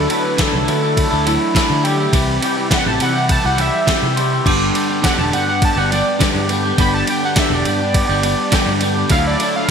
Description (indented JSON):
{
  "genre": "indie rock",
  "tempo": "103 BPM",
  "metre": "4/4",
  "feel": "straight",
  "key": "unclear",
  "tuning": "A4 = 440 Hz",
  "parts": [
    { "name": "fat analog lead", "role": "melody", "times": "0.0-9.7 s", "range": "E4 to B5", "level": "-21 LUFS", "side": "right 2 dB", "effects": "digital delay" },
    { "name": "clean electric guitar", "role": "riff", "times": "0.0-9.7 s", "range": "G2 to G4", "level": "-18 LUFS", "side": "left 1 dB", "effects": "double-tracked left and right" },
    { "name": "fingered electric bass", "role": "bass", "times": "0.0-9.3 s", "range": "E1 to D3", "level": "-21 LUFS", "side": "left 1 dB", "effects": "none" },
    { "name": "gated 80s digital drum machine", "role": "drums", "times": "0.1-9.5 s", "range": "crash cymbal, kick drum, ride cymbal, snare drum", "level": "-19 LUFS", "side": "equal", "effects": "gated reverb, gated reverb snare, overdrive" },
    { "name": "glockenspiel with rubber mallets", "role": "second line", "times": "3.9-4.9 s", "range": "C6 to E6", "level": "-29 LUFS", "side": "left 7 dB", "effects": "none" }
  ],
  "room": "moderate lush hall reverb, RT60 1.7 s, digital ambience",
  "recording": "bright 1980s-style digital production",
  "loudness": "-14 LUFS",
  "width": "side -6 dB against mid",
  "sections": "0.0-9.7 A section",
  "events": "analog synth lead solo 0.0-9.7",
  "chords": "0.0 Dadd9; 2.1 C; 4.5 G; 9.1 Dadd9"
}